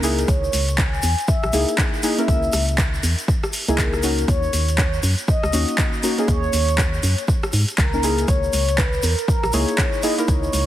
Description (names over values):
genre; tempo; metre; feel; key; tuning
deep house; 120 BPM; 4/4; swing 61% on 16ths; C# dorian; A4 = 439 Hz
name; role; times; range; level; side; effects
mellow horn-like synth lead; melody; 0.0-10.7 s; A#4 to G#5; -25 LUFS; equal; wide subtle chorus, tape echo
deep mellow chord stab; stabs; 0.0-10.7 s; A#3 to A#4; -24 LUFS; left 1 dB; chorus, vintage 12-bit sampler grit, sidechain pumping
organ-like FM bass; bass; 0.0-10.7 s; A#1 to G#2; -22 LUFS; equal; sidechain pumping
deep house drum kit; drums; 0.0-10.7 s; handclaps, hi-hat, rim click; -25 LUFS; equal; overdrive
tube shaker; percussion; 0.0-10.7 s; none; -31 LUFS; left 1 dB; none
electronic kick drum; drums; 0.3-10.4 s; none; -21 LUFS; equal; overdrive
room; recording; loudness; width
light reverb; heavily compressed radio sound, multiband compression; -17 LUFS; side -13 dB against mid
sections
0.0-10.7 A section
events
none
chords
0.0 C#m69; 4.3 D#m7; 8.0 C#m69